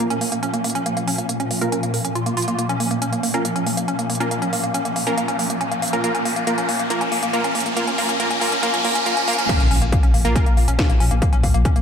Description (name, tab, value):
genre	driving peak-time techno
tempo	139 BPM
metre	4/4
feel	straight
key	Bb minor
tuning	A4 = 440 Hz
part	woody wave-folded pluck	riff	0.0-11.8 s	Bb3 to Bb4	-22 LUFS	equal	chorus, overdrive, sidechain pumping, ping-pong delay
part	supersaw stab	stabs	0.0-10.5 s	Bb3 to Bb4	-25 LUFS	right 2 dB	sidechain pumping, low-pass filter, digital delay
part	swarming drone	drone	0.0-11.8 s	Bb2 to F3	-28 LUFS	left 1 dB	built-in reverb, wide subtle chorus, sidechain pumping
part	techno drum kit	drums	0.0-11.8 s	crash cymbal, hi-hat, snare drum	-26 LUFS	right 1 dB	high-pass filter on hats, high-pass filter on cymbals, high-pass filter on snare, high-pass filter on room, gated reverb
part	riser and impact	sound effects	4.6-11.2 s	none	-26 LUFS	equal	none
part	electronic kick drum	drums	9.5-11.7 s	none	-17 LUFS	equal	none
part	saturated sub bass	bass	9.6-11.8 s	Bb1	-21 LUFS	equal	tube saturation, sidechain pumping, low-pass filter
room	wet lush hall reverb, RT60 1.6 s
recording	bright 1980s-style digital production, high-pass filter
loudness	-18 LUFS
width	side -7 dB against mid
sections	0.0-9.5 A section; 9.5-11.8 B section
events	build-up 0.0-9.5; filter sweep on supersaw synth 0.0-9.5; filter sweep 0.0-9.5; riser 4.6-9.5; drop 9.5-11.8; impact 9.5-11.2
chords	0.0 Bb5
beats	0.00 0.43 | 0.86 1.29 1.72 2.15 | 2.59 3.02 3.45 3.88 | 4.31 4.74 5.18 5.61 | 6.04 6.47 6.90 7.33 | 7.77 8.20 8.63 9.06 | 9.49 9.92 10.36 10.79 | 11.22 11.65